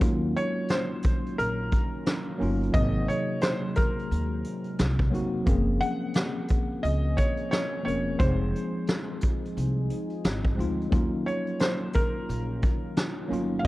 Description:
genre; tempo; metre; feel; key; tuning
lo-fi hip hop; 88 BPM; 4/4; swing 62% on 16ths; Eb dorian; A4 = 440 Hz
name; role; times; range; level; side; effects
mellow tine electric piano; accompaniment; 0.0-13.7 s; C3 to Bb4; -31 LUFS; left 1 dB; medium stereo tremolo, cassette tape, low-pass filter
deep dark ambient pad; sustained chords; 0.0-13.7 s; C3 to Ab4; -40 LUFS; equal; chorus, built-in reverb, low-pass filter
upright bass; bass; 0.0-13.6 s; Fb1 to Eb2; -28 LUFS; equal; none
vintage brush drum kit; drums; 0.0-13.7 s; hi-hat, kick drum, snare drum; -26 LUFS; equal; none
felt-muted upright piano; melody; 0.4-13.7 s; Bb4 to Gb5; -32 LUFS; equal; low-pass filter
room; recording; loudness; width
light reverb, small room ambience; dark, warm production; -24 LUFS; side -18 dB against mid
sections
0.0-13.7 A section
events
none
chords
0.0 Ebm9; 2.7 Ab9; 5.5 Gbmaj9#11; 8.2 Fm7; 10.9 Ebm9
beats
| 0.01 0.69 1.38 2.06 | 2.74 3.42 4.10 4.79 | 5.47 6.15 6.83 7.51 | 8.20 8.88 9.56 10.24 | 10.92 11.60 12.29 12.97 | 13.65

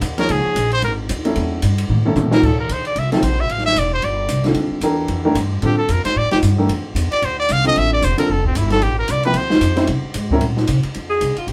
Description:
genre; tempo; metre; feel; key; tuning
modal jazz; 225 BPM; 4/4; swing 59% on 8ths; D minor; A4 = 440 Hz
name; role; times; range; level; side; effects
upright bass; bass; 0.0-11.5 s; E1 to C3; -22 LUFS; equal; none
open jazz drum kit; drums; 0.0-11.5 s; crash cymbal, hi-hat, kick drum, ride cymbal, snare drum, toms; -24 LUFS; equal; none
bright trumpet; melody; 0.2-9.9 s; C4 to F5; -22 LUFS; equal; none
warm baby grand piano; accompaniment; 0.2-10.4 s; C3 to Db5; -22 LUFS; equal; none
breathy alto saxophone; second line; 11.1-11.5 s; F4 to Ab4; -21 LUFS; equal; none
room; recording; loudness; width
moderate small room reverb, RT60 0.5 s; band playing live in one room; -18 LUFS; mono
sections
0.0-2.4 A section; 2.4-10.9 A section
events
trumpet solo 0.0-10.9; drum fill 1.9-2.4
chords
0.0 Absus4; 1.4 A7b9; 2.4 Dm11; 9.9 C7(no3); 10.9 Fm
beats
0.01 | 0.28 0.55 0.82 1.09 | 1.35 1.62 1.89 2.16 | 2.42 2.69 2.96 3.23 | 3.49 3.76 4.03 4.29 | 4.56 4.83 5.09 5.36 | 5.63 5.89 6.16 6.43 | 6.69 6.96 7.22 7.49 | 7.76 8.02 8.29 8.55 | 8.82 9.09 9.35 9.62 | 9.88 10.15 10.41 10.68 | 10.95 11.21 11.48

